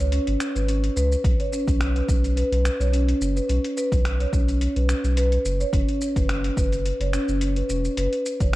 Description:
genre	organic downtempo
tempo	107 BPM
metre	4/4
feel	swing 54% on 16ths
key	unclear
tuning	A4 = 443 Hz
part	marimba with soft mallets	arpeggios	0.0-8.6 s	C#4 to C#5	-25 LUFS	equal	tape echo
part	warm sub bass	bass	0.0-8.6 s	E1 to C#2	-23 LUFS	equal	none
part	dusty soul sampler-style drum kit	drums	0.0-8.6 s	finger snaps, hi-hat, shaker	-34 LUFS	equal	none
part	electronic kick drum	drums	1.2-8.5 s	none	-24 LUFS	equal	overdrive
room	digital ambience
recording	dark, warm production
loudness	-20 LUFS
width	side -17 dB against mid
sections	0.0-8.6 A section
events	none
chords	0.0 C#5; 1.2 B5; 5.7 F#sus4

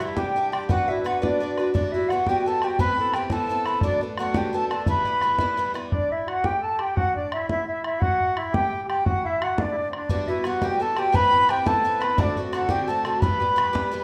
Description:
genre	celtic folk, Celtic jig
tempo	115 BPM (dotted quarters)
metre	6/8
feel	straight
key	E minor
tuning	A4 = 440 Hz
part	baroque flute	melody	0.0-14.0 s	D5 to B5	-26 LUFS	equal	none
part	accordion	second line	0.0-14.0 s	C4 to B4	-32 LUFS	equal	none
part	picked twelve-string acoustic guitar	accompaniment	0.0-5.9, 10.1-14.0 s	D2 to B4	-31 LUFS	equal	none
part	bodhran	percussion	0.0-13.8 s	none	-30 LUFS	equal	none
room	moderate recital hall reverb, RT60 1.6 s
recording	none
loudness	-23 LUFS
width	mono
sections	0.0-5.9 A section; 5.9-14.0 A section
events	none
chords	0.0 Cadd9; 0.7 Bm; 1.7 Emadd9; 2.8 Amadd9; 3.8 Bm7; 4.9 Em; 5.9 N.C.; 10.1 Emadd9; 11.1 Amadd9; 12.2 D7; 13.2 Em

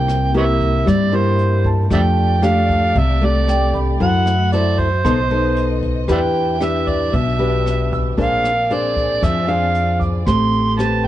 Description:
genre	bossa nova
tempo	115 BPM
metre	4/4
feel	straight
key	unclear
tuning	A4 = 440 Hz
part	overdriven harmonica	melody	0.0-11.1 s	B4 to C6	-20 LUFS	right 3 dB	plate reverb
part	nylon-string guitar	accompaniment	0.0-11.1 s	B2 to C5	-19 LUFS	left 2 dB	none
part	warm symphonic string section	sustained chords	0.0-11.1 s	A3 to E5	-30 LUFS	left 1 dB	none
part	upright bass	bass	0.0-11.1 s	A1 to G2	-19 LUFS	equal	none
part	jazz brush drum kit	drums	0.1-11.1 s	hi-hat, kick drum, rim click	-26 LUFS	equal	none
part	warm grand piano	accompaniment	1.7-11.1 s	G5 to E6	-30 LUFS	right 4 dB	none
room	light reverb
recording	worn, warbling old tape, cassette tape, warbly pitch drift, nothing above 10.3 kHz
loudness	-14 LUFS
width	side -13 dB against mid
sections	0.0-11.1 A section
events	none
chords	0.0 C7; 1.9 F69; 4.0 F#m7b5; 5.0 B7b9; 6.1 Em7; 8.2 Bb9; 10.3 Am9

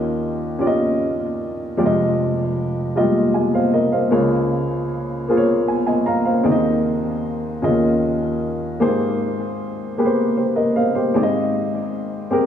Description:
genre	gospel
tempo	51 BPM (dotted quarters)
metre	6/8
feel	straight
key	Ab major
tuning	A4 = 440 Hz
part	dark upright piano	solo	0.0-12.5 s	F1 to Bb5	-17 LUFS	equal	tape echo
room	moderate concert hall reverb, RT60 2.1 s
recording	small room reverb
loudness	-17 LUFS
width	side -9 dB against mid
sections	0.0-11.1 A section; 11.1-12.5 B section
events	upright piano fill 5.3-6.5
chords	0.0 Eb9; 1.8 Fm9; 4.1 Db6; 6.5 Ab/Eb; 7.6 Eb9sus4; 8.8 Abmaj9; 11.1 Abmaj7

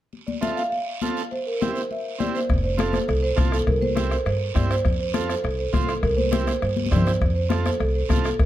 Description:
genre	latin, cumbia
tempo	204 BPM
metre	4/4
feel	straight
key	F major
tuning	A4 = 440 Hz
part	congas	percussion	0.1-8.5 s	none	-28 LUFS	left 5 dB	none
part	guiro	percussion	0.1-8.5 s	none	-38 LUFS	right 7 dB	none
part	marimba with medium mallets	melody	0.3-8.5 s	A4 to F5	-26 LUFS	right 2 dB	tape echo
part	overdriven combo organ	accompaniment	0.4-8.3 s	C4 to C5	-30 LUFS	right 5 dB	none
part	upright bass	bass	2.5-8.5 s	F1 to G2	-25 LUFS	equal	none
part	bombo	percussion	2.5-8.5 s	none	-24 LUFS	left 1 dB	none
room	light reverb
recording	dark, warm production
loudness	-20 LUFS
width	side -13 dB against mid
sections	0.1-2.5 A section; 2.5-8.5 B section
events	drum fill 6.8-7.2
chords	0.1 F; 1.3 C7; 2.5 F; 3.7 C; 4.9 F; 6.0 C; 7.2 F

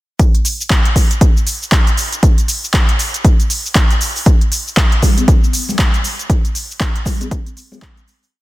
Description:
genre	house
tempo	118 BPM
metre	4/4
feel	swing 59% on 16ths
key	none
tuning	none
part	deep house drum kit	drums	0.2-8.3 s	cabasa, handclaps, hi-hat	-18 LUFS	equal	none
part	electronic kick drum	drums	0.2-7.9 s	none	-12 LUFS	equal	none
part	congas	percussion	5.0-7.8 s	none	-23 LUFS	left 1 dB	none
room	digital ambience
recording	dense, heavily limited modern master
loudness	-12 LUFS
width	side -18 dB against mid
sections	0.2-8.3 drop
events	drop 0.2-8.3; fade-out 5.6-8.3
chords	none

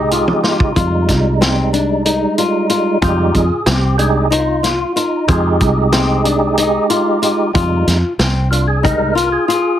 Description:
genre	progressive instrumental, band music in an uneven meter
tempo	186 BPM (eighths)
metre	7/8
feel	straight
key	F dorian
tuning	A4 = 440 Hz
part	percussive tonewheel organ	accompaniment	0.0-9.8 s	G3 to Bb4	-17 LUFS	right 2 dB	overdrive, chorus vibrato, fast rotary speaker
part	flamenco guitar	arpeggios	0.0-9.8 s	C4 to F4	-18 LUFS	left 5 dB	none
part	fingered electric bass	bass	0.0-9.4 s	C2 to F2	-17 LUFS	equal	none
part	vintage drum kit	drums	0.1-9.6 s	hi-hat, kick drum, snare drum, toms	-19 LUFS	equal	none
room	light reverb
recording	heavily compressed radio sound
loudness	-12 LUFS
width	side -10 dB against mid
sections	0.0-9.8 A section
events	tonewheel organ solo 0.0-9.8; drum fill 0.3-0.8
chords	0.0 Fm7

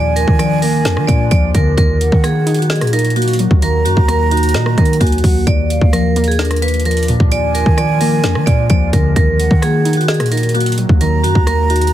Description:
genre	hip hop, trap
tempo	130 BPM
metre	4/4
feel	half-time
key	Eb harmonic minor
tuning	A4 = 440 Hz
part	vibraphone with medium hard mallets	melody	0.0-11.9 s	Gb4 to D5	-19 LUFS	equal	ping-pong delay
part	breathy mellow concert flute	second line	0.0-11.9 s	F5 to Bb5	-23 LUFS	right 8 dB	ping-pong delay
part	warbly dusty pluck	accompaniment	0.0-11.9 s	Eb2 to Eb5	-21 LUFS	left 1 dB	chorus
part	deep dark ambient pad	sustained chords	0.0-11.9 s	Eb3 to Gb4	-24 LUFS	left 1 dB	chorus, built-in reverb
part	long sustained 808-style bass	bass	0.0-11.9 s	Eb2 to Eb3	-16 LUFS	equal	none
part	trap drum kit	drums	0.2-11.9 s	hi-hat, kick drum, rim click, snare drum	-16 LUFS	equal	none
room	little or no reverb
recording	dense, heavily limited modern master, vinyl crackle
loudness	-11 LUFS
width	side -12 dB against mid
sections	0.0-11.9 A section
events	none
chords	0.0 Bb/Eb; 1.8 Ebm; 5.5 Bb/Eb; 9.2 Ebm

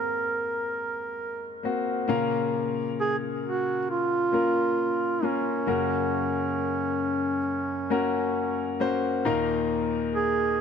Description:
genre	pop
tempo	67 BPM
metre	4/4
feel	straight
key	Bb minor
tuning	A4 = 440 Hz
part	warm duduk	melody	0.0-10.6 s	Db4 to Bb4	-27 LUFS	right 3 dB	ping-pong delay
part	clear grand piano	accompaniment	0.0-10.6 s	Eb2 to F5	-27 LUFS	left 4 dB	none
room	light reverb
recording	none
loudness	-24 LUFS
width	side -7 dB against mid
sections	0.0-2.1 A section; 2.1-10.6 B section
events	none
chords	0.0 Abadd9; 2.1 Bbm; 5.7 Gb; 9.3 Ebsus2

